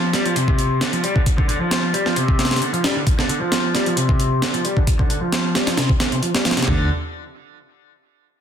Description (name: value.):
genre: breakbeat, breaks.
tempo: 133 BPM.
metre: 4/4.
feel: straight.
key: D minor.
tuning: A4 = 440 Hz.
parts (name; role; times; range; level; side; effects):
overdriven semi-hollow guitar; riff; 0.0-6.9 s; C3 to G3; -21 LUFS; left 1 dB; low-pass filter, ping-pong delay.
breakbeat sampler-style drum kit; drums; 0.1-6.8 s; hi-hat, kick drum, snare drum, toms; -19 LUFS; right 1 dB; overdrive.
modern bright picked electric bass; bass; 6.7-6.9 s; D2; -21 LUFS; equal; none.
room: light reverb.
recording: dense, heavily limited modern master.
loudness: -17 LUFS.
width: side -8 dB against mid.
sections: 0.0-6.7 A section; 6.7-8.4 B section.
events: filter sweep on overdriven electric guitar 0.0-6.7.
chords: 0.0 Dm7; 6.7 N.C..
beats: 0.36 0.81 | 1.26 1.71 2.17 2.62 | 3.07 3.52 3.97 4.42 | 4.87 5.32 5.77 6.22 | 6.68.